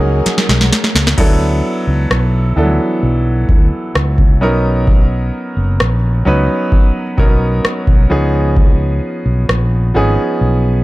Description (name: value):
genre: contemporary R&B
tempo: 65 BPM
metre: 4/4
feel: straight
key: unclear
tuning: A4 = 440 Hz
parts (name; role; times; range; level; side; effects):
- mellow horn-like synth lead; melody; 0.0-0.7 s; F#5; -32 LUFS; equal; none
- clear concert grand piano; accompaniment; 0.0-10.8 s; E3 to B4; -17 LUFS; right 1 dB; none
- warm studio string section; sustained chords; 0.0-1.1 s; F#3 to A#4; -28 LUFS; left 3 dB; none
- fretless electric bass; bass; 0.0-10.8 s; F#1 to D2; -14 LUFS; equal; none
- booming analog drum machine; drums; 0.3-9.7 s; crash cymbal, hi-hat, kick drum, rim click, snare drum; -12 LUFS; equal; none
room: little or no reverb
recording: dark, warm production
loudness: -11 LUFS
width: side -18 dB against mid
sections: 0.0-1.2 A section; 1.2-10.8 B section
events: drum fill 0.3-1.2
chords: 0.0 F#69; 1.2 D6; 4.4 Bmaj9; 8.1 C#7